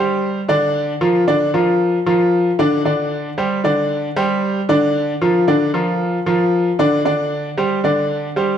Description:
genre	latin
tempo	114 BPM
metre	4/4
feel	straight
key	unclear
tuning	A4 = 441 Hz
part	bright baby grand piano	solo	0.0-8.6 s	D3 to D5	-15 LUFS	equal	none
room	moderate large studio reverb, RT60 1.4 s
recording	dark, warm production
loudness	-15 LUFS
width	side -9 dB against mid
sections	0.0-8.6 A section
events	none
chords	0.0 Csus2; 0.7 Bb; 2.9 Csus2; 5.0 Bb; 7.0 Csus2

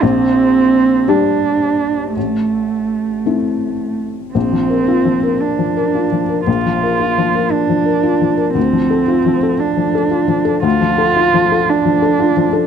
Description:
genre	neoclassical piano and strings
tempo	57 BPM (dotted quarters)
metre	6/8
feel	rubato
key	unclear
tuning	A4 = 440 Hz
part	muted cello	second line	0.0-12.7 s	A3 to F4	-15 LUFS	right 6 dB	none
part	felt-muted upright piano	accompaniment	0.0-12.7 s	A1 to Bb4	-16 LUFS	left 7 dB	none
room	small room ambience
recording	dry, close 1970s-style studio recording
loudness	-12 LUFS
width	side -8 dB against mid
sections	0.0-4.3 A section; 4.3-12.7 B section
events	none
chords	0.0 Gm/Bb; 2.2 Am; 4.3 Bb; 8.6 Dm

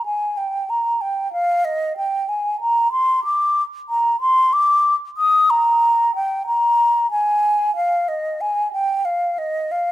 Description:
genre	classical, baroque-style fantasia for unaccompanied flute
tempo	62 BPM (dotted quarters)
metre	12/8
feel	rubato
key	Eb major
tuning	A4 = 440 Hz
part	mellow hollow concert flute	solo	0.0-9.9 s	Eb5 to Eb6	-16 LUFS	equal	none
room	light reverb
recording	close, detailed microphones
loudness	-16 LUFS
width	side -14 dB against mid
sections	0.0-9.9 A section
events	none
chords	none

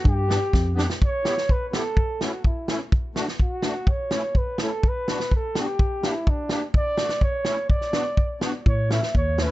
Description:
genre	alpine folk, alpine dance band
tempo	125 BPM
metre	2/4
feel	straight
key	unclear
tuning	A4 = 442 Hz
part	mellow flugelhorn	melody	0.0-9.5 s	D4 to E5	-27 LUFS	right 1 dB	analog delay
part	tine electric piano	bass	0.0-0.8, 8.7-9.5 s	Eb2 to A2	-24 LUFS	equal	none
part	natural country drum kit	drums	0.1-9.5 s	hi-hat, kick drum, snare drum	-22 LUFS	equal	none
part	musette accordion	accompaniment	0.3-9.5 s	A3 to G4	-30 LUFS	left 1 dB	none
room	light reverb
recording	dark, warm production, nothing above 7.9 kHz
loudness	-21 LUFS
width	side -16 dB against mid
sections	0.0-1.0 A section; 1.0-9.5 B section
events	drum fill 0.5-1.0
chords	0.0 G; 1.0 Em; 2.0 A; 2.9 D; 3.9 A; 4.8 Bm; 5.8 Gm; 6.7 D; 7.2 A; 7.7 Bm; 8.7 A

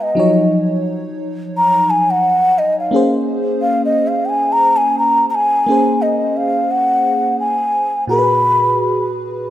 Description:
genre	R&B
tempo	87 BPM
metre	4/4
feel	swing 63% on 16ths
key	Bb minor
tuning	A4 = 440 Hz
part	breathy mellow bansuri	melody	0.0-9.1 s	Eb5 to Cb6	-14 LUFS	equal	none
part	FM electric piano with soft pad layer	accompaniment	0.0-9.5 s	Bb2 to Db5	-18 LUFS	equal	chorus
room	moderate lush hall reverb, RT60 2.5 s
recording	rough home demo mix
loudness	-13 LUFS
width	side -12 dB against mid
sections	0.0-5.7 A section; 5.7-9.5 B section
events	bansuri solo 0.0-5.7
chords	0.1 Ebm9; 2.9 Bbm9; 8.1 Abm9

